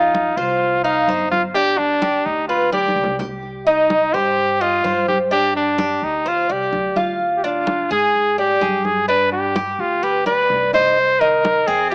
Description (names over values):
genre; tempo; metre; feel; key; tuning
latin, Cuban son and guajira; 127 BPM; 4/4; straight; unclear; A4 = 440 Hz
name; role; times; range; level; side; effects
clear trumpet; melody; 0.0-11.9 s; D4 to C5; -17 LUFS; equal; none
Cuban tres; arpeggios; 0.0-11.9 s; C4 to F5; -20 LUFS; equal; none
upright bass; bass; 0.0-11.9 s; G1 to Ab2; -32 LUFS; equal; none
congas; percussion; 0.1-11.9 s; none; -27 LUFS; equal; none
room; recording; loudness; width
moderate spring reverb, RT60 1.8 s, small room ambience; home recording on cassette, small speaker sound; -15 LUFS; side -36 dB against mid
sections
0.0-11.0 A section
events
drum fill 2.7-3.4, 10.3-11.0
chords
0.0 F5; 1.6 G; 3.4 Cm; 5.3 Gsus4; 7.2 Ddim; 9.1 G; 11.0 Cm7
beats
0.14 0.61 1.08 | 1.55 2.02 2.49 2.96 | 3.43 3.90 4.38 4.85 | 5.32 5.79 6.26 6.73 | 7.20 7.67 8.14 8.62 | 9.09 9.56 10.03 10.50 | 10.97 11.44 11.91